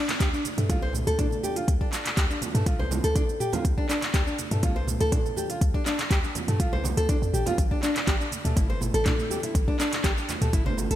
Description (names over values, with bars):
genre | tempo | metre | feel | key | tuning
afro house | 122 BPM | 4/4 | straight | D minor | A4 = 440 Hz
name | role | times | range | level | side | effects
nylon-string guitar | arpeggios | 0.0-11.0 s | A3 to C5 | -29 LUFS | equal | sidechain pumping, digital delay
afro-pop drum kit | drums | 0.1-11.0 s | handclaps, hi-hat, shaker, toms | -30 LUFS | right 1 dB | small room ambience, gated reverb
congas | percussion | 0.1-10.9 s | none | -34 LUFS | right 4 dB | none
warm 808-style bass | bass | 0.2-11.0 s | G1 to G2 | -28 LUFS | equal | sidechain pumping
electronic kick drum | drums | 0.2-10.6 s | none | -25 LUFS | equal | small room ambience
room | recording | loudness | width
light reverb | bright 1980s-style digital production | -23 LUFS | side -12 dB against mid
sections
0.0-11.0 A section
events
none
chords
0.0 Dm7; 7.6 A7(no3)